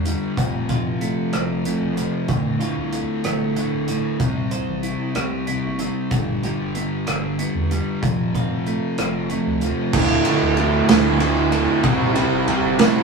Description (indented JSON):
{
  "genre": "quiet-loud alternative rock",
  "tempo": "63 BPM (dotted quarters)",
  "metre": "6/8",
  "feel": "straight",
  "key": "D dorian",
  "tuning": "A4 = 440 Hz",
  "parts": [
    { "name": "clean electric guitar", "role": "arpeggios", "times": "0.0-9.9 s", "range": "D2 to C5", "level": "-26 LUFS", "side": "right 5 dB", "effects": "none" },
    { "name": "fuzz guitar", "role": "riff", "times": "0.0-13.0 s", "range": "D2 to C4", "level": "-24 LUFS", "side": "left 4 dB", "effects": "distortion" },
    { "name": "round analog bass", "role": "bass", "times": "0.0-12.9 s", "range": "D1 to E2", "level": "-29 LUFS", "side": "right 2 dB", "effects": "none" },
    { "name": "big rock drum kit", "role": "drums", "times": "0.1-12.9 s", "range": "crash cymbal, hi-hat, kick drum, ride cymbal, rim click, snare drum", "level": "-22 LUFS", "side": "right 2 dB", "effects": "none" },
    { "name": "distorted electric guitar", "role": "riff", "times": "9.9-13.0 s", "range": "D2 to C5", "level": "-22 LUFS", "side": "right 3 dB", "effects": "distortion" },
    { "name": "raw garage guitar", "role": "riff", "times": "9.9-13.0 s", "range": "D2 to C4", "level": "-21 LUFS", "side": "right 5 dB", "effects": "overdrive" }
  ],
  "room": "light reverb",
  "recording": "rough rehearsal-room recording, tube saturation",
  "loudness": "-18 LUFS",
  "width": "side -4 dB against mid",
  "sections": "0.0-9.9 A section; 9.9-13.0 B section",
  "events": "none",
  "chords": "0.4 F; 2.3 Dm; 4.2 C; 6.1 G; 8.0 F; 9.9 Dm; 11.8 C"
}